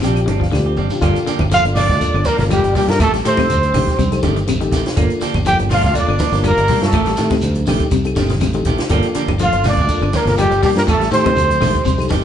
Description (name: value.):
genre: afrobeat.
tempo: 122 BPM.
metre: 4/4.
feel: swing 53% on 16ths.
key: G minor.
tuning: A4 = 439 Hz.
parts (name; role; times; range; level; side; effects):
reed electric piano; accompaniment; 0.0-12.2 s; Bb3 to A5; -24 LUFS; left 3 dB; fast tremolo.
electric guitar at the edge of break-up; arpeggios; 0.0-12.2 s; C3 to A3; -23 LUFS; left 5 dB; none.
semi-hollow electric guitar; stabs; 0.0-12.2 s; Eb3 to G4; -25 LUFS; right 6 dB; none.
fingered electric bass; bass; 0.0-12.2 s; G1 to A2; -19 LUFS; equal; none.
compact cocktail drum kit; drums; 0.0-12.2 s; hi-hat, kick drum, snare drum, toms; -22 LUFS; equal; none.
shekere; percussion; 0.0-12.2 s; none; -26 LUFS; right 1 dB; none.
claves; percussion; 0.2-12.1 s; none; -37 LUFS; left 6 dB; none.
congas; percussion; 0.3-12.2 s; none; -24 LUFS; equal; none.
breathy trumpet; melody; 1.5-12.1 s; G4 to G5; -17 LUFS; right 1 dB; none.
edgy tenor saxophone; second line; 1.5-12.1 s; G3 to G4; -30 LUFS; right 4 dB; none.
sitar; second line; 1.5-12.1 s; G3 to G4; -28 LUFS; left 3 dB; none.
room: wet large studio reverb, RT60 1.1 s.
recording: band playing live in one room, nothing above 10.5 kHz.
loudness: -13 LUFS.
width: side -9 dB against mid.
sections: 0.0-1.0 A section; 1.0-12.2 B section.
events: reed electric piano fill 0.0-1.0, 11.9-12.2; drum fill 0.5-1.0.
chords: 0.0 Bb69; 1.0 Gm7; 3.0 Am7b5; 5.0 Gm7; 6.9 Am7b5; 8.9 Gm7; 10.9 Am7b5.